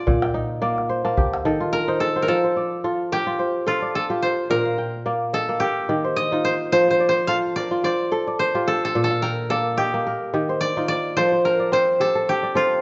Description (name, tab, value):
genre	west african traditional, West African string and xylophone music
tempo	108 BPM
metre	4/4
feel	swing 56% on 16ths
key	F mixolydian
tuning	A4 = 440 Hz
part	koto	melody	0.0-12.8 s	F4 to F5	-26 LUFS	equal	none
part	kora	arpeggios	0.0-12.8 s	Bb2 to A5	-24 LUFS	equal	none
part	calabash	percussion	0.1-2.2 s	none	-27 LUFS	equal	none
room	moderate recital hall reverb, RT60 1.6 s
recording	nothing above 7.6 kHz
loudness	-22 LUFS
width	mono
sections	0.0-2.3 A section; 2.3-11.2 B section; 11.2-12.8 C section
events	koto solo 0.0-2.3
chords	0.1 Bb; 1.2 Eb; 2.3 F; 4.5 Bb; 5.6 Eb; 6.7 F; 9.0 Bb; 10.1 Eb; 11.2 F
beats	| 0.07 0.62 1.18 1.73 | 2.28 2.84 3.39 3.95 | 4.51 5.06 5.62 6.17 | 6.73 7.29 7.84 8.40 | 8.95 9.51 10.06 10.62 | 11.17 11.73 12.28